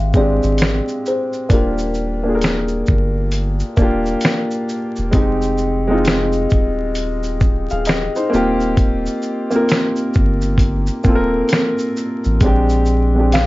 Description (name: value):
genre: lo-fi hip hop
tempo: 66 BPM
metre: 4/4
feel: swing 63% on 16ths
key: Eb major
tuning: A4 = 438 Hz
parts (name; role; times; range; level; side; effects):
- kalimba; melody; 0.0-4.7, 13.3-13.5 s; Bb4 to F5; -22 LUFS; left 2 dB; none
- dark upright piano; accompaniment; 0.0-13.5 s; Ab3 to F5; -18 LUFS; equal; cassette tape
- soft dub sub bass; bass; 0.0-13.5 s; Eb1 to Bb1; -20 LUFS; equal; none
- dusty soul sampler-style drum kit; drums; 0.1-13.5 s; hi-hat, kick drum, shaker, snare drum; -17 LUFS; equal; none
room: moderate studio reverb, RT60 0.5 s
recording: vinyl crackle, nothing above 7.5 kHz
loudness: -15 LUFS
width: side -19 dB against mid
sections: 0.0-12.4 A section; 12.4-13.5 A section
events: none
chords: 0.0 Bb13 (rootless); 1.5 Ebmaj9; 5.1 Fm7; 8.3 Eb69; 12.4 Bb13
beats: 0.59 | 1.50 2.41 3.32 4.23 | 5.14 6.05 6.96 7.87 | 8.78 9.69 10.59 11.50 | 12.41 13.32